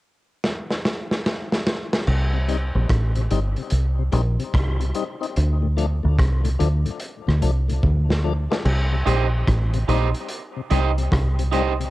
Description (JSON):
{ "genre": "dub reggae", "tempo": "73 BPM", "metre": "4/4", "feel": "swing 64% on 16ths", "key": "C dorian", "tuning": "A4 = 443 Hz", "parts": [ { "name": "crunchy breakbeat drum kit", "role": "drums", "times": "0.4-11.9 s", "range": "crash cymbal, hi-hat, kick drum, rim click, snare drum", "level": "-25 LUFS", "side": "equal", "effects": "cassette tape" }, { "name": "deep dub fingered electric bass", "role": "bass", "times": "2.1-11.9 s", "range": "G1 to D2", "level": "-20 LUFS", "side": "equal", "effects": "none" }, { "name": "tonewheel organ", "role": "accompaniment", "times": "2.3-11.8 s", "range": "D2 to Eb4", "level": "-29 LUFS", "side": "left 7 dB", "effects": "overdrive, slow rotary speaker, cassette tape, dub echo" }, { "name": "electric guitar at the edge of break-up", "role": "accompaniment", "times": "9.1-11.7 s", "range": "Eb4 to Eb5", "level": "-25 LUFS", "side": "right 8 dB", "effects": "cassette tape, dub echo" } ], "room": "light reverb, studio reverb", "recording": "home recording on cassette", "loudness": "-19 LUFS", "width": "side -17 dB against mid", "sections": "0.0-2.1 A section; 2.1-8.7 B section; 8.7-11.9 C section", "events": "drum fill 0.4-2.1, 7.8-8.7", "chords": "0.0 N.C.; 2.1 Cm; 5.4 Dm; 8.7 Cm", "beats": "0.43 1.25 | 2.07 2.89 3.72 4.54 | 5.36 6.18 7.01 7.83 | 8.65 9.47 10.29 11.12" }